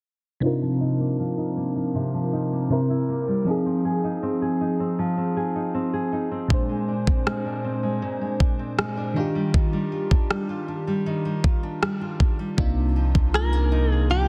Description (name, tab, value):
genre	contemporary R&B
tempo	79 BPM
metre	4/4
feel	straight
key	C minor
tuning	A4 = 442 Hz
part	FM electric piano with soft pad layer	accompaniment	0.4-14.3 s	Bb2 to C5	-28 LUFS	equal	chorus, low-pass filter
part	nylon-string guitar	arpeggios	0.4-14.3 s	Bb2 to Ab4	-30 LUFS	equal	low-pass filter
part	trap drum kit	drums	6.5-13.5 s	kick drum, rim click	-24 LUFS	equal	vintage 12-bit sampler grit, soft clipping on snare
part	clean 808-style bass	bass	12.6-14.3 s	C2	-24 LUFS	equal	none
part	direct-recorded clean electric guitar	melody	13.4-14.3 s	G4 to Bb4	-28 LUFS	equal	subtle chorus
room	light reverb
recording	dense, heavily limited modern master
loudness	-24 LUFS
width	mono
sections	0.4-12.6 A section; 12.6-14.3 B section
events	filter sweep 0.4-12.6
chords	0.4 Cm11; 2.7 C7; 3.5 Fm7; 6.5 Bb9; 9.2 Ebmaj9; 12.6 Cm11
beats	| 0.43 1.19 1.95 2.71 | 3.47 4.23 4.99 5.75 | 6.50 7.26 8.02 8.78 | 9.54 10.30 11.06 11.82 | 12.58 13.34 14.10